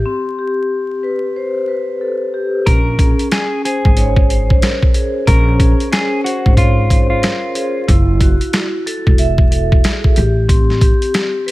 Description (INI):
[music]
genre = hip hop, boom-bap hip-hop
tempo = 92 BPM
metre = 4/4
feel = swing 62% on 16ths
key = unclear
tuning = A4 = 441 Hz
[part]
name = vibraphone with soft mallets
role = accompaniment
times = 0.0-11.5 s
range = C4 to Fb5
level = -18 LUFS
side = left 1 dB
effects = high-pass filter, low-pass filter
[part]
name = clean electric guitar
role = melody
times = 2.7-7.8 s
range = F4 to Bb4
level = -21 LUFS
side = equal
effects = high-pass filter, low-pass filter, digital delay
[part]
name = upright bass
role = bass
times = 2.7-10.9 s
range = Fb1 to Bb1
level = -16 LUFS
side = equal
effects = none
[part]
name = boom bap sampler-style drum kit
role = drums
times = 2.7-11.5 s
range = hi-hat, kick drum, snare drum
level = -13 LUFS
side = equal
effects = none
[sound]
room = small room ambience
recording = vinyl crackle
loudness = -12 LUFS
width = side -18 dB against mid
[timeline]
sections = 0.0-2.7 A section; 2.7-11.5 B section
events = break 0.1-2.7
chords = 0.0 Am9; 2.7 Bbm9; 7.9 Gbm9; 10.2 Am7